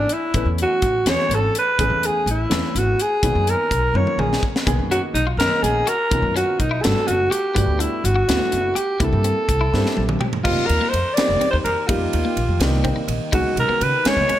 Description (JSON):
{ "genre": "electric jazz fusion", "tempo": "83 BPM (dotted quarters)", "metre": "6/8", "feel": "straight", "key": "unclear", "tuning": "A4 = 441 Hz", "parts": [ { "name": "growling alto saxophone", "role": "melody", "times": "0.0-14.4 s", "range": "D4 to D5", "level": "-20 LUFS", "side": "equal", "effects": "none" }, { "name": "dark baby grand piano", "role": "accompaniment", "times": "0.0-14.4 s", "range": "D#3 to G5", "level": "-27 LUFS", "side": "right 1 dB", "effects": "lush chorus" }, { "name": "upright bass", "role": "bass", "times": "0.0-14.3 s", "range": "F1 to Db3", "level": "-22 LUFS", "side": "equal", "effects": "none" }, { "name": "crisp fusion drum kit", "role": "drums", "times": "0.1-14.4 s", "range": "crash cymbal, hi-hat, kick drum, ride cymbal, snare drum, toms", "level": "-24 LUFS", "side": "equal", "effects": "gated reverb" }, { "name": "clean electric guitar", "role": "stabs", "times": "4.7-14.4 s", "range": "Bb3 to G4", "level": "-31 LUFS", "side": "left 6 dB", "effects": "analog chorus" }, { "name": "deep dark ambient pad", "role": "sustained chords", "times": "11.1-14.4 s", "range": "Eb3 to G4", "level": "-32 LUFS", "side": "right 1 dB", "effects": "chorus, built-in reverb" } ], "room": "light reverb, small room ambience", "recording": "bright 1980s-style digital production", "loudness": "-17 LUFS", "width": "side -12 dB against mid", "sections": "0.0-10.4 A section; 10.4-14.4 B section", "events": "drum fill 3.9-4.7, 9.7-10.4; grand piano fill 12.6-13.3", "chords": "0.0 Amaj9; 3.2 Bmaj9; 6.8 Gmaj9; 9.0 C7; 10.4 F9sus4; 13.3 Db9sus4" }